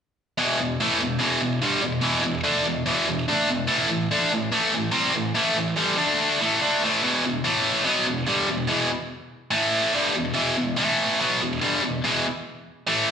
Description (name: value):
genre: rock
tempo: 144 BPM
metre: 4/4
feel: straight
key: unclear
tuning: A4 = 441 Hz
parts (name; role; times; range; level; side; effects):
- tight distorted guitar; solo; 0.4-13.1 s; E2 to D4; -20 LUFS; equal; distortion
room: wet large studio reverb, RT60 1.4 s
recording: band playing live in one room, nothing above 10.9 kHz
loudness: -20 LUFS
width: side -7 dB against mid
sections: 0.4-7.0 A section; 7.0-13.1 B section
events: none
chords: 0.4 E5; 3.7 A5; 6.0 D5; 6.4 A5; 7.0 E5; 7.4 A5; 7.9 E5; 9.5 A5; 9.9 E5; 10.8 A5; 11.2 E5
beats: | 0.38 0.80 1.21 1.62 | 2.04 2.45 2.87 3.28 | 3.70 4.11 4.53 4.94 | 5.36 5.77 6.19 6.61 | 7.02 7.44 7.86 8.27 | 8.69 9.11 9.52 9.94 | 10.36 10.78 11.20 11.61 | 12.03 12.45 12.87